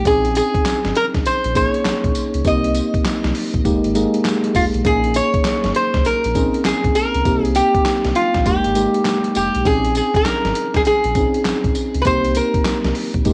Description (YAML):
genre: R&B, new jack swing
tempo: 100 BPM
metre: 4/4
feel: swing 64% on 16ths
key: Bb dorian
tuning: A4 = 441 Hz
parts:
  - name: lap resonator guitar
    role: melody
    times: 0.0-13.3 s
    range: F4 to Eb5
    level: -21 LUFS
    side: equal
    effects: cassette tape, plate reverb
  - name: mellow tine electric piano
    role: accompaniment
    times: 0.0-13.3 s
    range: Ab3 to Ab4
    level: -23 LUFS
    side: equal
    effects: cassette tape, plate reverb
  - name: round analog bass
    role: bass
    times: 0.0-13.3 s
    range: F1 to Db2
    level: -26 LUFS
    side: equal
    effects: none
  - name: dusty soul sampler-style drum kit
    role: drums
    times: 0.1-13.3 s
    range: handclaps, hi-hat, kick drum, snare drum, tambourine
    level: -24 LUFS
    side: equal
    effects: cassette tape
room: moderate studio reverb, RT60 0.5 s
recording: home recording on cassette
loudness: -18 LUFS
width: mono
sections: 0.0-13.3 A section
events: none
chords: 0.1 Bbm11; 2.5 Cm7; 3.7 Fm11; 4.9 Bbm11; 7.3 Cm7; 8.5 Fm11; 9.7 Bbm11; 12.1 Cm7